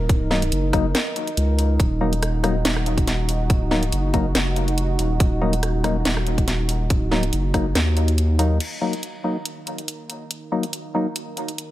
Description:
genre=deep dubstep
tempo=141 BPM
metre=4/4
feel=swing 54% on 16ths, half-time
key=Eb minor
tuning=A4 = 441 Hz
part: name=dark analog pad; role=sustained chords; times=0.0-11.7 s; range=Eb4 to Bb4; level=-29 LUFS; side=right 2 dB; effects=chorus
part: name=saturated sub bass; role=bass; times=0.0-8.6 s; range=Eb1 to Eb2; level=-21 LUFS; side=equal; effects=none
part: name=electronic kick drum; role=drums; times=0.1-7.6 s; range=none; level=-20 LUFS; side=equal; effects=studio reverb
part: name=garage drum kit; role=drums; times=0.1-11.7 s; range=crash cymbal, hi-hat, rim click, snare drum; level=-25 LUFS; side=equal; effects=studio reverb
part: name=percussive organ stab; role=stabs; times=0.3-11.1 s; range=Gb3 to Eb4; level=-26 LUFS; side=left 2 dB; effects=chorus, dub echo
room=little or no reverb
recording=none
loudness=-19 LUFS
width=side -15 dB against mid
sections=0.0-8.6 A section; 8.6-11.7 B section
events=drop 0.0-8.6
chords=0.0 Ebm

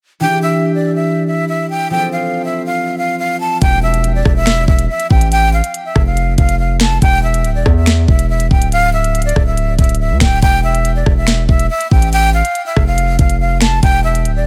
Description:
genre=hip hop, drill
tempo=141 BPM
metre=4/4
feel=half-time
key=E phrygian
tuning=A4 = 440 Hz
part: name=breathy jazz flute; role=melody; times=0.2-14.5 s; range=D5 to A5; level=-20 LUFS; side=equal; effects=digital delay
part: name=concert harp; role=accompaniment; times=0.2-4.9 s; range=E3 to A4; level=-22 LUFS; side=equal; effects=none
part: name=distorted 808-style bass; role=bass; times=3.6-14.5 s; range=D1 to E2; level=-17 LUFS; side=equal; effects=distortion
part: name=drill drum kit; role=drums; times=3.6-14.4 s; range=finger snaps, hi-hat, kick drum, rim click, snare drum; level=-15 LUFS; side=equal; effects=none
room=small room ambience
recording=none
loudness=-14 LUFS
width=mono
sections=0.2-3.6 A section; 3.6-14.5 B section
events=none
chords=0.2 Em7; 1.9 F; 3.6 Emadd11; 5.3 F; 7.0 Dsus24; 8.7 Dsus2; 10.4 Emadd11; 12.1 F; 13.8 Dsus24

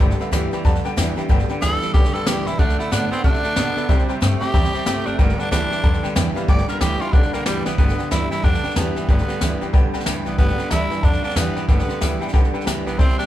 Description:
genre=rockabilly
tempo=185 BPM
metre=4/4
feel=swing 61% on 8ths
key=G major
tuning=A4 = 440 Hz
part: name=honky-tonk upright piano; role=accompaniment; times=0.0-13.3 s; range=A4 to A5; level=-31 LUFS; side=left 4 dB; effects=none
part: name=picked steel-string acoustic guitar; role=accompaniment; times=0.0-13.3 s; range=G2 to A4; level=-31 LUFS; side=left 4 dB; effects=none
part: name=twangy electric guitar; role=riff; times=0.0-13.3 s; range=G2 to B3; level=-26 LUFS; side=right 3 dB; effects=none
part: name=upright bass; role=bass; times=0.0-13.2 s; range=F#1 to C3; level=-23 LUFS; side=equal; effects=none
part: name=jazz brush drum kit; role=drums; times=0.0-13.2 s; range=hi-hat, kick drum, snare drum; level=-20 LUFS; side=equal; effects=none
part: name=growling tenor saxophone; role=melody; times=1.6-13.3 s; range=G3 to D5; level=-25 LUFS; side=equal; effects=none
room=light reverb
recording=band playing live in one room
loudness=-17 LUFS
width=side -13 dB against mid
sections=0.0-7.8 A section; 7.8-13.3 B section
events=tenor saxophone solo 0.0-7.8; drum fill 7.6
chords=0.0 G; 2.6 D; 3.9 C; 5.2 G

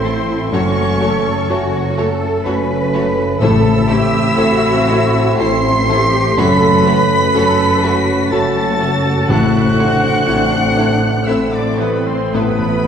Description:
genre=cinematic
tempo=62 BPM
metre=3/4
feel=rubato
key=A dorian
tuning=A4 = 444 Hz
part: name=dark studio violin section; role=melody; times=0.0-12.9 s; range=B5 to C7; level=-24 LUFS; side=left 2 dB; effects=none
part: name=bright small flute group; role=second line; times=0.0-12.9 s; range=B4 to C6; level=-20 LUFS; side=equal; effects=none
part: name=rich studio violin section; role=second line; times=0.0-12.4 s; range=A4 to C#5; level=-26 LUFS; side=left 1 dB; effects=none
part: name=warm cor anglais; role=second line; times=0.0-12.9 s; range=B3 to C5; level=-23 LUFS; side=right 2 dB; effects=none
part: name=felt-muted upright piano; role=accompaniment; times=0.0-12.9 s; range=F#2 to A4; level=-20 LUFS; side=left 1 dB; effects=none
part: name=rich studio viola section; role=accompaniment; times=0.0-12.4 s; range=A3 to F#4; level=-26 LUFS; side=equal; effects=none
part: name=dark French horn section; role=sustained chords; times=0.0-12.9 s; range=A3 to C#4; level=-21 LUFS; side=left 1 dB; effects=none
part: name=concert harp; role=arpeggios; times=0.0-12.9 s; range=F#2 to A5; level=-23 LUFS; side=left 4 dB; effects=none
part: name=rich studio cello section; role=bass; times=0.0-12.9 s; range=C4 to B4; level=-22 LUFS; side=right 1 dB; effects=none
part: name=rich studio double bass section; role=bass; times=0.0-12.9 s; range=F#1 to A1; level=-20 LUFS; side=right 3 dB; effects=none
part: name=timpani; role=percussion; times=3.4-4.8, 9.3-12.9 s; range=A2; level=-22 LUFS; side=equal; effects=none
room=wet concert hall reverb, RT60 2.0 s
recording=heard from further back in the room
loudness=-12 LUFS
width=side -8 dB against mid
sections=0.0-12.9 A section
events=timpani fill 12.3-12.9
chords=0.0 Am; 0.5 F#m; 3.4 Am; 6.4 F#m; 9.3 Am; 12.3 Amadd9

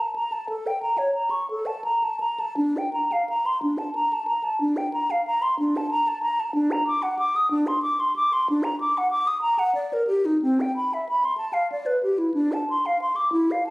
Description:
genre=classical, baroque-style fantasia for unaccompanied flute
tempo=61 BPM (dotted quarters)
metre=12/8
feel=rubato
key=A minor from 10.4 s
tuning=A4 = 438 Hz
part: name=mellow hollow silver concert flute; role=solo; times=0.0-13.7 s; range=C4 to Eb6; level=-21 LUFS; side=equal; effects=none
room=wet recital hall reverb, RT60 1.4 s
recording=recorded on a phone in the room, club reverb, compression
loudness=-21 LUFS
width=side -22 dB against mid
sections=0.0-13.7 A section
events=none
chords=none

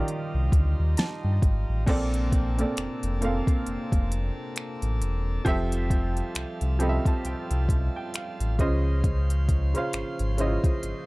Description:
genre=contemporary R&B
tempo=67 BPM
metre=4/4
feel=swing 58% on 16ths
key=unclear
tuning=A4 = 437 Hz
part: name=dark baby grand piano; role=accompaniment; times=0.0-11.1 s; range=Bb2 to Cb6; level=-30 LUFS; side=right 2 dB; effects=none
part: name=pipe organ, principal chorus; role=sustained chords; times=0.0-11.1 s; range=C3 to C5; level=-37 LUFS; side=equal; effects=none
part: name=sub bass with octave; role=bass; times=0.0-10.9 s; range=E1 to G2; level=-26 LUFS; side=equal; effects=none
part: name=soft round pluck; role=texture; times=0.0-2.3 s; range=F5 to A5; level=-40 LUFS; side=right 6 dB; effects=chorus, digital delay
part: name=smooth R&B drum kit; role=drums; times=0.1-11.1 s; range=crash cymbal, finger snaps, hi-hat, kick drum, snare drum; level=-25 LUFS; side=equal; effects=none
room=little or no reverb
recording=dark, warm production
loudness=-23 LUFS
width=side -22 dB against mid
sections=0.0-1.9 A section; 1.9-11.1 B section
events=grand piano fill 6.4-9.0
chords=0.0 Ebmaj9; 1.9 Bbmaj9; 5.5 Fmaj9; 8.6 Dbmaj9

